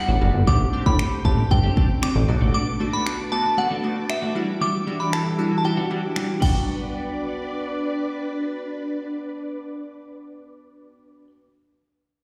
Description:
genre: dance-pop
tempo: 116 BPM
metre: 4/4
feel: straight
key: G major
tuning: A4 = 440 Hz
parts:
  - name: glassy synth bell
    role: melody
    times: 0.0-11.2 s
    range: E5 to D6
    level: -29 LUFS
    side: equal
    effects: chorus, phaser, slapback echo, delay
  - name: glassy wavetable pluck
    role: accompaniment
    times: 0.0-11.3 s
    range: F#3 to A4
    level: -31 LUFS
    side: equal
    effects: chorus, sidechain pumping, slapback echo
  - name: ensemble organ-string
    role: sustained chords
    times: 0.0-11.2 s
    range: E3 to D6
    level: -32 LUFS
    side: equal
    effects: ensemble chorus, sidechain pumping
  - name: twelve-string electric guitar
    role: riff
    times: 0.1-11.3 s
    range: G3 to G4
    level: -32 LUFS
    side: equal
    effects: lush chorus, slapback echo
  - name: chorused synth bass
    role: bass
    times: 0.1-2.5 s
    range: F#1 to A2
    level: -22 LUFS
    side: equal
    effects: sidechain pumping
  - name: pop drum kit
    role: drums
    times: 0.5-6.5 s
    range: crash cymbal, finger snaps, kick drum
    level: -25 LUFS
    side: equal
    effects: none
room: light reverb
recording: live gig heard through the venue's PA, recital hall reverb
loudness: -23 LUFS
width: mono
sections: 0.0-6.7 A section; 6.7-10.8 B section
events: none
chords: 0.5 D7sus4/A; 2.3 Bm7; 4.4 Em9; 6.4 Gmaj7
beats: | 0.47 0.99 1.51 2.03 | 2.54 3.06 3.58 4.09 | 4.61 5.13 5.65 6.16 | 6.68 7.20 7.71 8.23 | 8.75 9.27 9.78 10.30

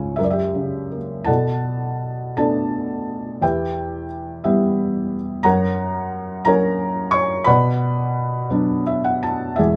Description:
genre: classical, lyrical solo piano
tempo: 58 BPM (dotted quarters)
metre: 6/8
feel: uneven beats, rubato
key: B minor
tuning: A4 = 442 Hz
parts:
  - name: felt-muted upright piano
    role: solo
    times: 0.0-9.8 s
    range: E1 to C#6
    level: -21 LUFS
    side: equal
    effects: none
room: light reverb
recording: none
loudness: -21 LUFS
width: mono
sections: 0.0-1.3 A section; 1.3-9.6 B section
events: felt piano fill 8.5-9.6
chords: 0.2 F#7; 1.3 Bm7; 3.4 Em; 5.4 F#; 7.5 Bm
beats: 0.18 | 1.28 2.37 | 3.42 4.43 | 5.44 6.46 | 7.47 8.51 | 9.59

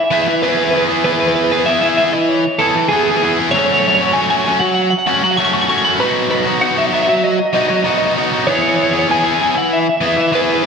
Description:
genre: rock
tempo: 97 BPM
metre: 4/4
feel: straight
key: E major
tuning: A4 = 441 Hz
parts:
  - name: twelve-string electric guitar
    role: melody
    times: 0.0-10.7 s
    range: G#4 to C#6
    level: -16 LUFS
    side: equal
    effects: spring reverb, digital delay
  - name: biting overdriven guitar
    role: riff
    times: 0.1-10.7 s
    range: E3 to G#4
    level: -15 LUFS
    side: equal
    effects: none
room: wet scoring stage reverb, RT60 2.0 s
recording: big arena sound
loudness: -12 LUFS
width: side -6 dB against mid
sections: 0.0-10.7 A section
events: none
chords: 0.0 E; 3.5 F#m; 6.0 B/F#; 8.5 E6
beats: 0.43 | 1.04 1.66 2.28 2.90 | 3.52 4.14 4.76 5.38 | 6.00 6.62 7.24 7.86 | 8.48 9.10 9.72 10.34

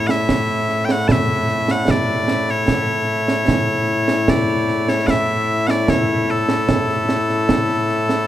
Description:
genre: scottish traditional, Scottish pipe music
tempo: 75 BPM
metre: 3/4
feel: straight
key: A major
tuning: A4 = 438 Hz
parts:
  - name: loud bright bagpipes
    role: melody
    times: 0.0-8.3 s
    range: A2 to A5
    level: -17 LUFS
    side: left 1 dB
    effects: none
  - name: concert snare drum and concert bass drum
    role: drums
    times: 0.1-8.3 s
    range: none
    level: -20 LUFS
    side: right 2 dB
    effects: none
room: light reverb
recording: none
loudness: -16 LUFS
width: side -12 dB against mid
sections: 0.0-8.3 A section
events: none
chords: none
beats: 0.29 1.09 | 1.89 2.69 3.49 | 4.29 5.09 5.89 | 6.69 7.49

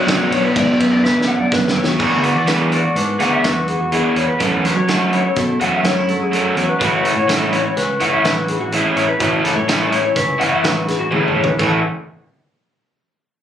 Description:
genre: math rock and midwest emo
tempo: 125 BPM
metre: 5/4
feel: straight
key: A major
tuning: A4 = 436 Hz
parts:
  - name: electric guitar through a small old amp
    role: arpeggios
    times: 0.0-11.8 s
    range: F#4 to F#5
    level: -21 LUFS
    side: left 5 dB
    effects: none
  - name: crunchy overdriven guitar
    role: riff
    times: 0.0-11.8 s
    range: A2 to A4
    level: -17 LUFS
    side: right 1 dB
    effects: none
  - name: growling picked electric bass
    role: bass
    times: 0.1-11.8 s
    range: F#1 to F#3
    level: -23 LUFS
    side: equal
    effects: overdrive
  - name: loose indie drum kit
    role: drums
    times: 0.1-11.7 s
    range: crash cymbal, hi-hat, kick drum, ride cymbal, snare drum, toms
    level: -22 LUFS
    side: equal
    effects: none
  - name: twangy electric guitar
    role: accompaniment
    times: 2.0-11.8 s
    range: F#2 to A4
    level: -22 LUFS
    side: right 3 dB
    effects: analog chorus
room: light reverb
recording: recorded on a phone in the room, club reverb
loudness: -14 LUFS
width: side -10 dB against mid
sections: 0.0-2.0 A section; 2.0-11.6 B section; 11.6-13.4 C section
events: drum fill 1.0-2.0, 11.1-11.6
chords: 0.0 Bm; 2.0 E9; 4.4 F#m7; 6.8 A69; 11.6 A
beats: 0.08 0.56 1.04 1.52 | 2.00 2.48 2.96 3.44 3.92 | 4.41 4.89 5.37 5.85 6.33 | 6.81 7.29 7.77 8.25 8.73 | 9.20 9.68 10.16 10.64 11.11 | 11.59

